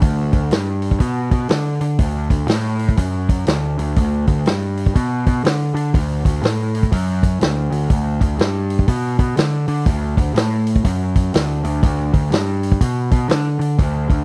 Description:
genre	blues rock power trio and southern rock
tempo	122 BPM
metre	4/4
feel	swing 63% on 8ths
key	D major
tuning	A4 = 439 Hz
part	fuzz picked electric bass	bass	0.0-14.2 s	D2 to D3	-18 LUFS	equal	overdrive
part	vintage drum kit	drums	0.0-14.2 s	hi-hat, kick drum, snare drum	-18 LUFS	equal	none
room	little or no reverb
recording	dry, close 1970s-style studio recording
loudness	-15 LUFS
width	side -36 dB against mid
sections	0.0-14.2 A section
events	none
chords	none

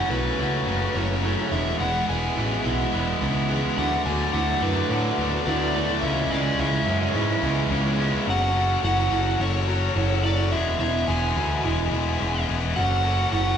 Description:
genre	post-rock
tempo	107 BPM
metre	4/4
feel	straight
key	F# minor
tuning	A4 = 440 Hz
part	overdriven slide guitar	melody	0.0-13.6 s	B4 to G#5	-28 LUFS	right 1 dB	none
part	electric guitar through a small old amp	arpeggios	0.0-8.3 s	E2 to F#4	-32 LUFS	left 1 dB	none
part	kalimba	arpeggios	0.0-13.6 s	C#4 to F#4	-33 LUFS	right 6 dB	none
part	distorted electric guitar	riff	0.0-8.3 s	F#2 to F#4	-28 LUFS	right 5 dB	distortion
part	overdriven electric guitar	riff	0.0-13.6 s	F#2 to A4	-26 LUFS	left 5 dB	none
part	growling picked electric bass	bass	0.1-13.6 s	E1 to A2	-26 LUFS	equal	overdrive
room	wet recital hall reverb, RT60 1.8 s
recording	recorded in a church or concert hall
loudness	-21 LUFS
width	side -8 dB against mid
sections	0.0-8.3 A section; 8.3-13.6 B section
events	build-up 0.0-8.3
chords	0.0 F#m; 1.5 Eadd9; 3.8 D6; 6.0 C#m7; 8.3 F#m; 10.5 E6; 12.8 F#m

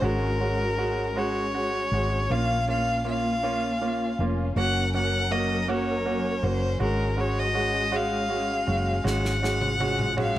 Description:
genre	six-eight pop ballad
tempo	53 BPM (dotted quarters)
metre	6/8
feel	straight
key	unclear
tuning	A4 = 440 Hz
part	warm violin	melody	0.0-10.4 s	Bb4 to Gb5	-28 LUFS	left 1 dB	analog delay
part	clear concert grand piano	accompaniment	0.0-10.4 s	Ab3 to Gb4	-29 LUFS	right 2 dB	none
part	warm studio string section	sustained chords	0.0-10.4 s	F3 to Bb4	-34 LUFS	left 1 dB	none
part	hollow-body short-scale fingered electric bass	bass	0.0-10.4 s	F1 to Bb1	-29 LUFS	equal	none
part	modern studio drum kit	drums	9.1-10.4 s	snare drum, toms	-30 LUFS	equal	none
room	light reverb, studio reverb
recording	none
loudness	-23 LUFS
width	side -13 dB against mid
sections	0.0-10.4 A section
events	drum fill 9.1-10.4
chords	0.0 Ab7sus4; 2.3 Bbm; 4.6 Gb; 6.8 Ab7sus4

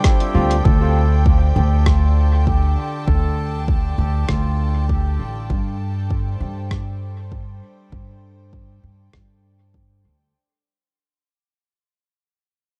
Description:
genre	ambient dub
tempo	99 BPM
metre	4/4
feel	swing 53% on 16ths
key	D minor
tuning	A4 = 440 Hz
part	trumpet with cup mute	melody	0.0-5.5 s	F4 to A4	-32 LUFS	equal	dub echo
part	rich chamber string section	sustained chords	0.0-10.3 s	D3 to A5	-32 LUFS	equal	none
part	electronic kick drum	drums	0.0-9.9 s	none	-21 LUFS	equal	overdrive
part	lo-fi sampler-style drum kit	drums	0.0-9.3 s	hi-hat, rim click	-29 LUFS	equal	dub echo
part	overdriven tine electric piano	stabs	0.3-0.5 s	G3 to F4	-28 LUFS	equal	dub echo
part	upright bass	bass	0.3-10.3 s	A1 to G2	-20 LUFS	equal	none
room	small room ambience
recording	dark, warm production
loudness	-19 LUFS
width	mono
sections	0.6-10.3 A section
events	fade-out 0.6-10.3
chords	0.0 G7sus4; 0.6 Dm; 5.5 Gsus4

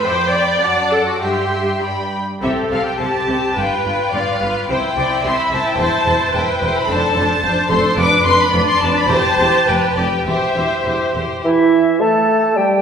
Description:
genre	quick classical-period movement for symphony orchestra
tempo	99-110 BPM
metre	2/4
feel	rubato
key	C major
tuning	A4 = 440 Hz
part	rich studio violin section	melody	0.0-11.1 s	E5 to D6	-19 LUFS	left 2 dB	none
part	rich studio violin section	second line	0.0-11.4 s	C4 to B5	-21 LUFS	left 2 dB	none
part	clear studio viola section	accompaniment	0.0-11.1 s	F#4 to E5	-20 LUFS	equal	none
part	clear studio cello section	bass	0.0-11.2 s	E2 to C3	-24 LUFS	right 1 dB	none
part	clear studio double bass section	bass	2.4-11.2 s	E1 to C2	-26 LUFS	right 2 dB	none
part	silver concert flute	second line	11.4-12.8 s	E5 to A5	-18 LUFS	right 1 dB	none
part	warm clarinet	second line	11.4-12.8 s	E4 to A4	-15 LUFS	right 4 dB	none
part	mellow bassoon	accompaniment	11.4-12.8 s	E3 to A3	-18 LUFS	right 1 dB	none
part	mellow French horn section	sustained chords	11.4-12.8 s	E3 to A3	-20 LUFS	right 1 dB	none
room	wet recital hall reverb, RT60 1.5 s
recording	recorded in a church or concert hall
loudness	-14 LUFS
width	side -7 dB against mid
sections	0.0-2.4 A section; 2.4-11.4 B section; 11.4-12.8 B section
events	none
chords	0.0 Dm7/F; 0.6 D/F#; 1.2 C/G; 2.4 C5; 3.6 G7; 4.7 C; 5.8 C/E; 6.9 Dm7/F; 8.0 Bdim/F; 9.1 C/E; 9.7 G7/F; 10.3 C/E; 11.4 N.C.

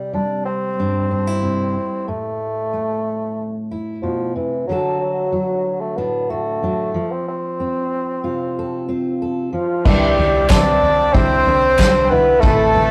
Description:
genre	indie folk with a building arrangement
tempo	92 BPM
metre	4/4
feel	straight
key	C major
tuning	A4 = 438 Hz
part	dark bassoon	melody	0.0-12.9 s	E3 to D4	-21 LUFS	equal	none
part	fingerpicked steel-string acoustic guitar	accompaniment	0.0-9.9 s	G2 to A4	-26 LUFS	equal	none
part	warm trumpet	second line	9.5-12.9 s	F4 to D5	-24 LUFS	equal	none
part	picked steel-string acoustic guitar	accompaniment	9.9-12.9 s	A2 to C5	-27 LUFS	equal	none
part	pedal harmonium	sustained chords	9.9-12.9 s	G4 to B5	-35 LUFS	equal	none
part	clear upright piano	arpeggios	9.9-12.9 s	C4 to E4	-28 LUFS	equal	none
part	hollow-body short-scale fingered electric bass	bass	9.9-12.9 s	A1 to C2	-26 LUFS	equal	none
part	soft-mallet drum kit	drums	9.9-12.9 s	crash cymbal, kick drum, snare drum, toms	-20 LUFS	equal	none
part	group handclap	percussion	10.5-11.9 s	none	-29 LUFS	equal	none
room	moderate stone room reverb, RT60 1.0 s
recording	rough rehearsal-room recording, warm saturation, lossy compression artefacts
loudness	-19 LUFS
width	mono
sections	0.0-9.9 A section; 9.9-12.9 B section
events	none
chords	0.0 Cadd9; 2.1 Amadd9; 4.7 D; 6.9 F; 9.9 Cadd9

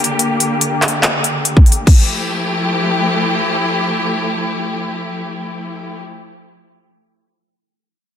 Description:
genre	future bass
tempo	143 BPM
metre	4/4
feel	swing 55% on 16ths, half-time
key	F major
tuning	A4 = 442 Hz
part	clear studio string section	sustained chords	0.0-6.0 s	D3 to G4	-18 LUFS	left 1 dB	sidechain pumping, low-pass filter
part	big-room dance drum kit	drums	0.0-2.0 s	crash cymbal, handclaps, hi-hat	-17 LUFS	left 1 dB	overdrive
part	electronic kick drum	drums	1.6-2.0 s	none	-8 LUFS	equal	none
room	moderate lush hall reverb, RT60 1.8 s, digital ambience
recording	dense, heavily limited modern master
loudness	-13 LUFS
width	side -9 dB against mid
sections	0.0-1.9 A section; 1.9-5.2 B section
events	filter sweep on string section 0.0-1.9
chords	0.0 Bb6/D; 1.9 Fmaj9

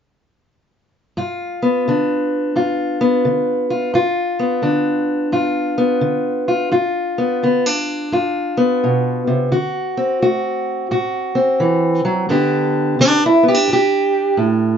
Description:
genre	acoustic country blues, solo or duo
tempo	86 BPM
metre	4/4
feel	swing 64% on 8ths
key	G mixolydian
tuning	A4 = 442 Hz
part	fingerpicked steel-string acoustic guitar	solo	1.2-14.8 s	G2 to G4	-15 LUFS	equal	none
room	moderate small room reverb, RT60 0.5 s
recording	nothing above 7.6 kHz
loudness	-15 LUFS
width	side -7 dB against mid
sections	1.1-12.3 A section; 12.3-14.8 B section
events	steel-string acoustic guitar solo 12.3-14.8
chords	1.1 G7; 9.5 D7; 12.3 G

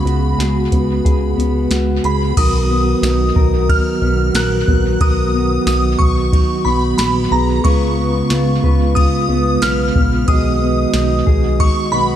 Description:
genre	dream pop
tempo	91 BPM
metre	4/4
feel	straight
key	unclear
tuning	A4 = 440 Hz
part	shimmering bell with halo	melody	0.0-12.2 s	Bb5 to Gb6	-21 LUFS	equal	ensemble chorus, dub echo
part	mellow tonewheel organ	sustained chords	0.0-12.2 s	C#3 to Gb4	-19 LUFS	right 3 dB	fast rotary speaker
part	mellow electric guitar	arpeggios	0.0-12.2 s	Db3 to Cb5	-21 LUFS	left 4 dB	wide subtle chorus, dub echo
part	chorused synth bass	bass	0.0-12.2 s	Bb1 to Db2	-18 LUFS	equal	none
part	vibraphone with soft mallets	texture	0.0-12.2 s	Ab4 to Gb5	-29 LUFS	moving between left 3 dB and right 8 dB	auto-pan, dub echo
part	soft vintage rhythm box	drums	0.1-11.8 s	crash cymbal, hi-hat, kick drum, ride cymbal, snare drum, tambourine	-18 LUFS	equal	dub echo
room	light reverb, digital ambience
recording	echo-heavy mix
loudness	-13 LUFS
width	side -10 dB against mid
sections	0.0-2.4 A section; 2.4-12.2 B section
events	none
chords	0.0 Db7sus4; 2.4 Cbmaj7; 7.6 Db7; 10.3 Abm7/Cb

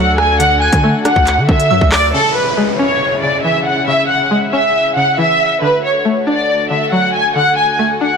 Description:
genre	hip hop, drill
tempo	138 BPM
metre	4/4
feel	half-time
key	C# phrygian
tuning	A4 = 440 Hz
part	warm studio violin section	melody	0.0-8.2 s	A4 to G#5	-13 LUFS	equal	low-pass filter
part	soft synth bell	second line	0.0-2.1 s	D6 to F#6	-26 LUFS	right 2 dB	chorus, phaser, ping-pong delay
part	string-like resonator pluck	accompaniment	0.0-8.2 s	C#3 to D4	-19 LUFS	left 2 dB	chorus, low-pass filter
part	dark chamber string section	sustained chords	0.0-8.2 s	D2 to A4	-23 LUFS	left 1 dB	none
part	long sustained 808-style bass	bass	0.0-2.1 s	D2 to D3	-16 LUFS	equal	none
part	drill drum kit	drums	0.2-2.0 s	handclaps, hi-hat, kick drum, rim click	-16 LUFS	equal	soft clipping on snare
part	downlifter	sound effects	2.1-5.6 s	none	-25 LUFS	equal	none
room	light reverb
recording	blown-out, overdriven recording, overdrive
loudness	-11 LUFS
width	side -6 dB against mid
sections	0.0-2.1 A section; 2.1-8.2 B section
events	none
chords	0.0 D; 2.1 C#m; 5.6 D

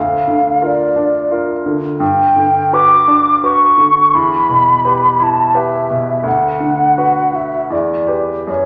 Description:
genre	classical, romantic duo for flute and grand piano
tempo	83 BPM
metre	3/4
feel	uneven beats, rubato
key	unclear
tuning	A4 = 442 Hz
part	mellow hollow silver concert flute	melody	0.0-8.7 s	C#5 to D6	-14 LUFS	equal	none
part	clear baby grand piano	accompaniment	0.0-8.7 s	D2 to B4	-20 LUFS	equal	none
room	wet recital hall reverb, RT60 1.4 s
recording	none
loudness	-13 LUFS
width	mono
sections	0.0-8.7 A section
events	none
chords	0.0 Bb/D; 2.0 Gmaj7; 4.1 Em; 6.2 Bm/D; 7.7 Em

